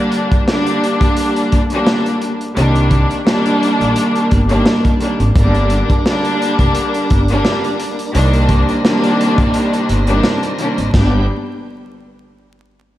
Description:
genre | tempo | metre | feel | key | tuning
hip hop, boom-bap hip-hop | 86 BPM | 4/4 | swing 54% on 16ths | G minor | A4 = 440 Hz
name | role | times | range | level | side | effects
warm studio string section | accompaniment | 0.0-11.2 s | C2 to D4 | -15 LUFS | equal | cassette tape, high-pass filter, low-pass filter
crunchy breakbeat drum kit | drums | 0.1-11.1 s | hi-hat, kick drum, snare drum, splash cymbal | -17 LUFS | equal | none
upright bass | bass | 2.6-11.3 s | F1 to C2 | -16 LUFS | equal | none
tonewheel organ | sustained chords | 5.4-11.3 s | Eb3 to Bb5 | -26 LUFS | right 1 dB | fast rotary speaker, high-pass filter, low-pass filter
room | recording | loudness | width
wet plate reverb, RT60 2.4 s | dreamy mix soaked in reverb, vinyl crackle, faint mains hum | -12 LUFS | side -14 dB against mid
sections
0.0-10.9 A section; 10.9-13.0 B section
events
break 0.0-2.6, 9.5-10.9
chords
0.0 Gm; 2.6 Cm7; 5.4 Gm; 8.1 Cm7; 10.9 G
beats
0.47 1.17 1.87 | 2.57 3.26 3.96 4.66 | 5.36 6.05 6.75 7.45 | 8.15 8.85 9.54 10.24 | 10.94

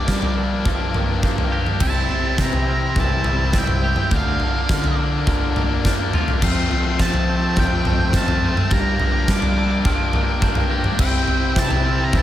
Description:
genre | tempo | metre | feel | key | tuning
post-rock | 104 BPM | 4/4 | straight | unclear | A4 = 440 Hz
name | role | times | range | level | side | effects
octave-fuzz lead guitar | melody | 0.0-12.2 s | D5 to D6 | -26 LUFS | right 4 dB | distortion, slapback echo
dark studio string section | sustained chords | 0.0-12.2 s | E4 to Bb5 | -35 LUFS | right 4 dB | none
glockenspiel with rubber mallets | arpeggios | 0.0-12.2 s | E6 to Bb6 | -34 LUFS | right 6 dB | slapback echo
twangy electric guitar | arpeggios | 0.0-12.2 s | F2 to G4 | -28 LUFS | right 1 dB | wide subtle chorus, slapback echo
biting overdriven guitar | riff | 0.0-12.2 s | A3 to E4 | -26 LUFS | left 7 dB | none
fuzz fingered electric bass | bass | 0.1-12.2 s | C2 to G3 | -24 LUFS | equal | overdrive
huge arena drum kit | drums | 0.1-12.2 s | crash cymbal, kick drum, snare drum, toms | -20 LUFS | equal | none
room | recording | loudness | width
small room ambience | none | -17 LUFS | side -12 dB against mid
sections
0.0-12.2 A section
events
build-up 0.0-12.2; drum fill 5.8-6.4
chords
0.0 Gm7; 1.8 C; 4.1 Bb/D; 6.4 F; 8.7 Gm7; 11.0 C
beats
0.09 0.66 1.24 | 1.82 2.40 2.97 3.55 | 4.12 4.70 5.27 5.85 | 6.42 7.00 7.57 8.14 | 8.72 9.29 9.86 10.43 | 11.01 11.58 12.15

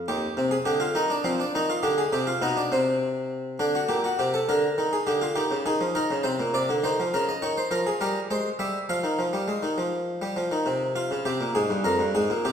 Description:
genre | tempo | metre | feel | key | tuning
classical, baroque-style two-part invention for harpsichord | 68 BPM (dotted quarters) | 6/8 | straight | F minor | A4 = 440 Hz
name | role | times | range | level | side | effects
harpsichord | solo | 0.0-12.5 s | Eb2 to F5 | -23 LUFS | equal | none
room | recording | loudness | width
wet recital hall reverb, RT60 1.6 s | heard from further back in the room | -23 LUFS | side -8 dB against mid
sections
0.0-3.6 A section; 3.6-10.7 B section; 10.7-12.5 A section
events
none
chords
0.1 Cm/Eb; 1.8 G7; 2.7 N.C.; 3.6 D7; 4.5 Gm/D; 5.4 Eb7; 6.2 Bbadd9; 7.1 Bbm/Db; 8.0 C7/G; 8.9 Fm; 10.7 F5/C; 11.6 Fm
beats
| 0.08 0.95 | 1.82 2.70 | 3.59 4.48 | 5.36 6.23 | 7.11 7.98 | 8.87 9.77 | 10.67 11.55 | 12.44

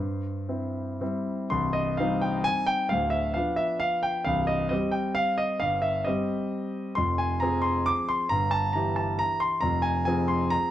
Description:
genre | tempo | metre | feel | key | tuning
classical, piano waltz | 133 BPM | 3/4 | uneven beats, rubato | C minor | A4 = 440 Hz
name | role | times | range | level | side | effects
clear grand piano | solo | 0.0-10.7 s | C1 to D6 | -24 LUFS | equal | none
room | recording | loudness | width
light reverb | dark, warm production | -24 LUFS | side -12 dB against mid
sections
0.0-1.5 A section; 1.5-10.7 B section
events
none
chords
0.0 C; 1.5 Cm; 2.9 Bdim/D; 4.3 Cm; 7.0 Fm; 8.3 Gm69; 9.6 Fm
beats
0.49 1.01 | 1.52 1.99 2.45 | 2.90 3.34 3.81 | 4.26 4.71 5.17 | 5.62 6.07 6.53 | 6.98 7.42 7.87 | 8.31 8.74 9.19 | 9.62 10.07 10.52

